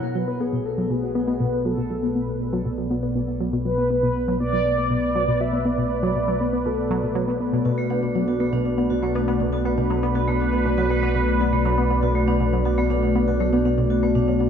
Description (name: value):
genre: ambient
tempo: 120 BPM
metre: 4/4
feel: straight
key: B minor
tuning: A4 = 438 Hz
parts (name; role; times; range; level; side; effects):
- sweeping resonant pad; sustained chords; 0.0-14.5 s; B2 to F#5; -24 LUFS; left 1 dB; chorus
- tight sequenced synth; riff; 0.0-14.5 s; B2 to B3; -26 LUFS; left 1 dB; chorus, tape echo
- warm sub bass; bass; 0.0-14.5 s; B1; -28 LUFS; equal; none
- mellow horn-like synth lead; melody; 0.2-7.4 s; G#4 to E5; -26 LUFS; equal; wide subtle chorus, tape echo
- vibraphone with medium hard mallets; arpeggios; 7.7-14.5 s; A3 to F#4; -26 LUFS; right 1 dB; auto-pan, tape echo
room: moderate plate reverb, RT60 2.7 s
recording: dreamy mix soaked in reverb, nothing above 7.6 kHz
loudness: -20 LUFS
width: side -8 dB against mid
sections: 0.0-14.5 A section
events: fade-in on sub bass 0.0-14.5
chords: 0.0 Bm7